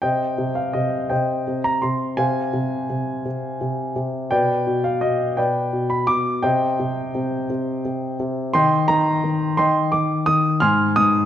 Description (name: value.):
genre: classical-period piano sonatina.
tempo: 57 BPM (dotted quarters).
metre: 6/8.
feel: rubato.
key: C minor.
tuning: A4 = 440 Hz.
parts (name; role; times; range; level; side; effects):
warm grand piano; solo; 0.0-11.3 s; Ab2 to F6; -18 LUFS; equal; none.
room: wet recital hall reverb, RT60 1.4 s.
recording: dark, warm production.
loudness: -19 LUFS.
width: side -10 dB against mid.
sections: 0.0-11.3 A section.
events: none.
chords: 0.0 Cm; 2.2 Fm/C; 4.3 G7b13/B; 6.4 Cm; 8.5 Eb6; 10.6 Fm/Ab.